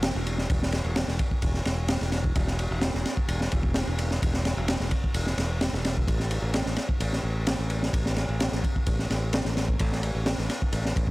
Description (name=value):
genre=breakbeat, breaks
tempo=129 BPM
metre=4/4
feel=straight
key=unclear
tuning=A4 = 440 Hz
part: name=modern bright fingered electric bass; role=bass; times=0.0-11.1 s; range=E1 to A1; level=-28 LUFS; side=equal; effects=none
part: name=crunchy breakbeat drum kit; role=drums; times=0.0-11.1 s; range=kick drum, ride cymbal, snare drum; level=-26 LUFS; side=equal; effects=none
room=little or no reverb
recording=none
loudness=-24 LUFS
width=side -20 dB against mid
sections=0.0-11.1 A section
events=none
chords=none